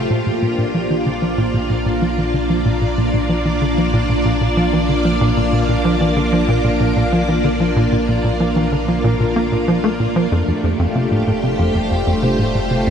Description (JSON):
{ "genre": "ambient, sequencer-driven space music", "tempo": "94 BPM", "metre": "4/4", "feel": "straight", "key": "Bb major", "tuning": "A4 = 440 Hz", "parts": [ { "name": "string machine, full ensemble", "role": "sustained chords", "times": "0.0-12.9 s", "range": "A3 to A5", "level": "-18 LUFS", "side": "equal", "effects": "ensemble chorus, shimmer reverb" }, { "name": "tight sequencer bass", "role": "riff", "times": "0.0-12.9 s", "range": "F2 to Bb3", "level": "-18 LUFS", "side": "equal", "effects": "wide subtle chorus, ping-pong delay" }, { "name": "warm sub bass", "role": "bass", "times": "0.0-12.9 s", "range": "F1 to Bb1", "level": "-25 LUFS", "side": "equal", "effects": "tube saturation" } ], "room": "wet huge ambient reverb, RT60 7.8 s", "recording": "none", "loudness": "-15 LUFS", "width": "side -8 dB against mid", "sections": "0.0-12.9 A section", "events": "none", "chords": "0.1 Bb; 10.3 Fadd9", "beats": "| 0.10 0.74 1.38 2.02 | 2.65 3.29 3.93 4.57 | 5.21 5.85 6.48 7.12 | 7.76 8.40 9.04 9.68 | 10.31 10.95 11.59 12.23 | 12.87" }